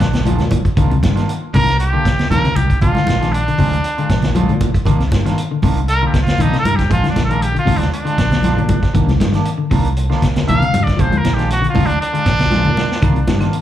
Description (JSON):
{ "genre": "afrobeat", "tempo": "118 BPM", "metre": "4/4", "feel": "straight", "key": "C minor", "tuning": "A4 = 444 Hz", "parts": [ { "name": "clear trumpet", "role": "melody", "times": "0.0-13.5 s", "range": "D4 to F5", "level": "-19 LUFS", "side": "equal", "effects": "slapback echo" }, { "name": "clean electric guitar", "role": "arpeggios", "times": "0.0-13.6 s", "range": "C3 to F3", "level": "-21 LUFS", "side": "left 6 dB", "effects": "none" }, { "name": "electric guitar at the edge of break-up", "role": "stabs", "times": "0.0-13.6 s", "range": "Eb3 to F4", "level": "-24 LUFS", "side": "right 6 dB", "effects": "spring reverb, slapback echo" }, { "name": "fingered electric bass", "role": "bass", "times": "0.0-13.5 s", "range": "Bb1 to Bb2", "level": "-18 LUFS", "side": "equal", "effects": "none" }, { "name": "vintage drum kit", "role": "drums", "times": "0.0-13.6 s", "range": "hi-hat, kick drum, snare drum", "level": "-19 LUFS", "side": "equal", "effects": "none" }, { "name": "congas", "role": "percussion", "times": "0.1-13.4 s", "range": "none", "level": "-21 LUFS", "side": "equal", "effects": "slapback echo" }, { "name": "claves", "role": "percussion", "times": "13.0-13.5 s", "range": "none", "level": "-34 LUFS", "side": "right 2 dB", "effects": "slapback echo" } ], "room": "light reverb", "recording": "live gig heard through the venue's PA, club reverb", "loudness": "-13 LUFS", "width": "side -12 dB against mid", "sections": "0.0-13.6 A section", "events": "trumpet solo 0.0-13.6; drum fill 12.5-13.0", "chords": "0.0 Bb7; 0.8 Cm11; 2.8 Bb7; 4.9 Cm11; 6.9 Bb7; 8.9 Cm11; 11.0 Bb7; 13.0 Cm11", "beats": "0.26 | 0.77 1.28 1.80 2.31 | 2.82 3.33 3.84 4.35 | 4.86 5.37 5.88 6.39 | 6.90 7.42 7.92 8.44 | 8.95 9.46 9.96 10.47 | 10.98 11.49 12.00 12.51 | 13.02 13.53" }